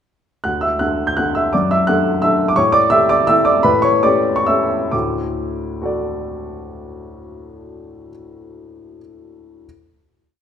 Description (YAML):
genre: classical, piano waltz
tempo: 127-178 BPM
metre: 3/4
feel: rubato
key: D major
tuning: A4 = 440 Hz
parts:
  - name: warm baby grand piano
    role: solo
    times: 0.4-9.7 s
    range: D2 to G6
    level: -15 LUFS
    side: equal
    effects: none
room: moderate recital hall reverb, RT60 1.4 s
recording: minimal, uncompressed stereo recording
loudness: -14 LUFS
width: side -8 dB against mid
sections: 0.4-4.9 A section; 4.9-7.5 final chord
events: slowing down 2.0-4.9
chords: 0.4 D; 1.5 D/F#; 2.6 A7sus4; 3.6 A7; 4.9 D